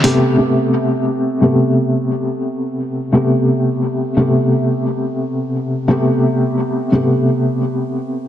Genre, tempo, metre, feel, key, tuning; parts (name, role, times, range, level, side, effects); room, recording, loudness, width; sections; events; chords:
trip hop; 87 BPM; 4/4; swing 59% on 16ths; A minor; A4 = 439 Hz
felt-muted upright piano; accompaniment; 0.0-8.3 s; C3 to G4; -14 LUFS; equal; tremolo, low-pass filter, tape echo
moderate echo chamber reverb, RT60 2.0 s; dense, heavily limited modern master; -14 LUFS; side -11 dB against mid
0.4-8.3 A section
0.4 Am9